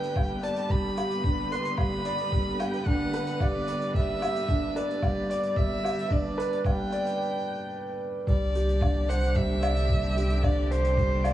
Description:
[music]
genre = piano and strings electronica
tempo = 111 BPM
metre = 4/4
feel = straight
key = G major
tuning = A4 = 440 Hz
[part]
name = dark violin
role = melody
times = 0.0-11.3 s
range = C5 to C6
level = -32 LUFS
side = right 1 dB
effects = cassette tape, tape echo
[part]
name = muted studio string section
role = sustained chords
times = 0.0-11.3 s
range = C3 to B4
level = -36 LUFS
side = right 1 dB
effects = cassette tape
[part]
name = felt-muted upright piano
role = riff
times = 0.0-11.3 s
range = G3 to D5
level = -30 LUFS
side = equal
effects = cassette tape, tape echo
[part]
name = hi-hat and woodblock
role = drums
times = 0.0-11.3 s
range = none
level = -37 LUFS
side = left 1 dB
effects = cassette tape
[part]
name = electronic kick drum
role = drums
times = 0.2-11.1 s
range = none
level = -27 LUFS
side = equal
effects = cassette tape
[part]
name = warm sub bass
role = bass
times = 8.3-11.3 s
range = C2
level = -27 LUFS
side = equal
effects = sidechain pumping
[sound]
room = moderate spring reverb, RT60 1.7 s, small room ambience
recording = home recording on cassette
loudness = -25 LUFS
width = side -13 dB against mid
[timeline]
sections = 0.0-8.3 A section; 8.3-11.3 B section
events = build-up 0.0-8.3; filter sweep on string section 0.0-8.3; filter sweep on violin 0.0-8.3; break 7.2-8.3; drop 8.3-11.3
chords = 0.0 G; 8.3 Csus2

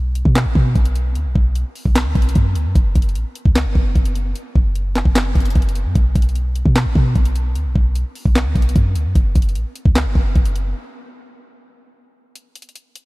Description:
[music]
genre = hip hop, trap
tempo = 150 BPM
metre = 4/4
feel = half-time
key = B minor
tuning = A4 = 443 Hz
[part]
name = clean 808-style bass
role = bass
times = 0.0-10.7 s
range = F#1 to B2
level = -18 LUFS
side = equal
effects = none
[part]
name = trap drum kit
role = drums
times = 0.2-13.0 s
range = handclaps, hi-hat, kick drum, snare drum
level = -16 LUFS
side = equal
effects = none
[sound]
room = little or no reverb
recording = none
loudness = -15 LUFS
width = side -22 dB against mid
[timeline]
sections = 0.0-12.4 A section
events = break 10.8-12.4; kick muted 12.4-13.1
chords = none

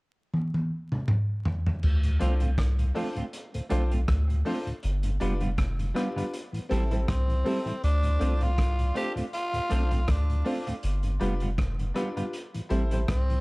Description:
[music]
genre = roots reggae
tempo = 80 BPM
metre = 4/4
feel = swing 56% on 16ths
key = D dorian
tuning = A4 = 440 Hz
[part]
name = crunchy breakbeat drum kit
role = drums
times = 0.3-13.4 s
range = crash cymbal, hi-hat, kick drum, rim click, toms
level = -30 LUFS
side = equal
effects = none
[part]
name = soft dub sub bass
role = bass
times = 1.8-13.4 s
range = F1 to D2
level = -25 LUFS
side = equal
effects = none
[part]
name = mellow tonewheel organ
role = accompaniment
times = 2.0-13.4 s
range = D2 to G4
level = -35 LUFS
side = left 1 dB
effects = slow rotary speaker
[part]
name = semi-hollow electric guitar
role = accompaniment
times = 2.2-13.0 s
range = G3 to F4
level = -35 LUFS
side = right 2 dB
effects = dub echo
[part]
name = clear upright piano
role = stabs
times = 2.2-13.1 s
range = C4 to C5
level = -35 LUFS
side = left 1 dB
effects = none
[part]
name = breathy tenor saxophone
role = melody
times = 7.1-13.4 s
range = C4 to G4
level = -33 LUFS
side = equal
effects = dub echo
[sound]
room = studio ambience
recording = dark, warm production, vinyl crackle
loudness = -25 LUFS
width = side -25 dB against mid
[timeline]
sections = 0.0-1.8 A section; 1.8-7.8 B section; 7.8-13.4 C section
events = drum fill 0.3-1.8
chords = 0.0 N.C.; 1.8 Dm7; 4.8 G7; 6.3 Am7; 7.8 Dm7; 10.8 G7; 12.3 Am7

